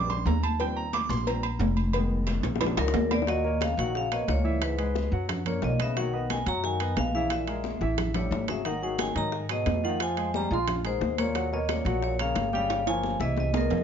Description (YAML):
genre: Afro-Cuban jazz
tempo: 178 BPM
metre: 4/4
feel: straight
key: Eb minor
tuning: A4 = 438 Hz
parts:
  - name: warm grand piano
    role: accompaniment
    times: 0.0-13.8 s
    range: Eb3 to D6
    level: -32 LUFS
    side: right 1 dB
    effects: none
  - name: upright bass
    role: bass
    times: 0.0-13.8 s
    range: F1 to Ab2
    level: -30 LUFS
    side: equal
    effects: none
  - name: agogo bells and timbales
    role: percussion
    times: 0.1-13.8 s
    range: none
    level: -34 LUFS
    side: right 9 dB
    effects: none
  - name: congas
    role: percussion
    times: 0.1-13.8 s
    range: none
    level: -35 LUFS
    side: left 1 dB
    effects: none
  - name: cowbell and bongos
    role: percussion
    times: 0.3-13.8 s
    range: none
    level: -36 LUFS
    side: left 6 dB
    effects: none
  - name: vibraphone with medium hard mallets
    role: melody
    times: 2.8-13.8 s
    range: Bb4 to C6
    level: -31 LUFS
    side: equal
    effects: tape echo
  - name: clear trombone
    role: second line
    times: 2.8-13.8 s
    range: E2 to Ab3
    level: -36 LUFS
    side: left 6 dB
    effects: none
room: moderate studio ambience, RT60 0.5 s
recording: nothing above 7.5 kHz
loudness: -25 LUFS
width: side -8 dB against mid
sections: 0.0-3.3 A section; 3.3-13.8 B section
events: grand piano solo 0.0-3.3; drum fill 2.4-3.3, 7.8-8.7, 12.7-13.8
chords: 0.0 Bb13; 0.6 Eb69; 1.9 Fm7b5; 2.6 Bb7alt; 3.3 Ebm7; 4.6 Dbm7; 5.3 Gb; 6.0 B6; 7.3 Eadd11; 8.0 A7; 8.7 Abm7; 10.0 Fm; 10.7 Bb5; 11.4 Ebm9; 12.7 Gm7b5